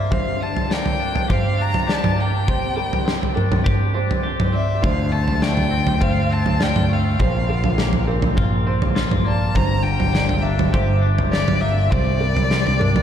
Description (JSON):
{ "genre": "post-rock", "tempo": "102 BPM", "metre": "4/4", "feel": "straight", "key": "unclear", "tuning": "A4 = 439 Hz", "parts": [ { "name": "warm violin", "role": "melody", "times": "0.0-13.0 s", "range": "D5 to Bb5", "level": "-25 LUFS", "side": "left 3 dB", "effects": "diffuse ambient delay" }, { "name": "felt-muted upright piano", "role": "arpeggios", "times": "0.0-13.0 s", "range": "Bb4 to D5", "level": "-29 LUFS", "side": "right 3 dB", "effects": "wide subtle chorus, diffuse ambient delay" }, { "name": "twangy electric guitar", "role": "arpeggios", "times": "0.0-13.0 s", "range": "G2 to G4", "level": "-28 LUFS", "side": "left 3 dB", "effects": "wide subtle chorus, diffuse ambient delay" }, { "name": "big rock drum kit", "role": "drums", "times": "0.1-13.0 s", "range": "kick drum, snare drum, toms", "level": "-20 LUFS", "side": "right 1 dB", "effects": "none" }, { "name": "growling picked electric bass", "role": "bass", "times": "4.8-13.0 s", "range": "G1 to D2", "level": "-21 LUFS", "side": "left 1 dB", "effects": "overdrive" } ], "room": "moderate cathedral reverb, RT60 5.9 s", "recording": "dreamy mix soaked in reverb", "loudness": "-17 LUFS", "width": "side -9 dB against mid", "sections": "0.0-13.0 A section", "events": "none", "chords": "0.1 Gm; 2.5 Csus2; 4.8 Dm7; 7.2 Bbadd9; 9.6 Gm; 11.9 Csus2" }